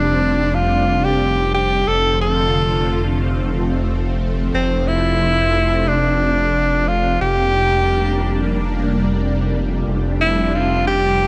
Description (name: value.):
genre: synthwave.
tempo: 90 BPM.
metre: 4/4.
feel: straight.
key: F major.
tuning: A4 = 440 Hz.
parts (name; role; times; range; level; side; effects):
breathy tenor saxophone; melody; 0.0-11.3 s; C4 to A4; -20 LUFS; equal; delay.
analog string pad; sustained chords; 0.0-11.3 s; D3 to F4; -26 LUFS; equal; ensemble chorus, phaser.
detuned saw bass; bass; 0.0-11.3 s; F1; -22 LUFS; equal; chorus.
room: light reverb, small room ambience.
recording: none.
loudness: -18 LUFS.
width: mono.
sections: 0.0-11.3 A section.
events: none.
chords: 0.0 Csus2/F; 1.9 Dm7/F; 4.5 F; 7.2 Gm/F; 9.9 Csus2/F.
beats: 0.54 1.21 | 1.88 2.54 3.21 3.88 | 4.54 5.21 5.88 6.54 | 7.21 7.88 8.54 9.21 | 9.88 10.54 11.21.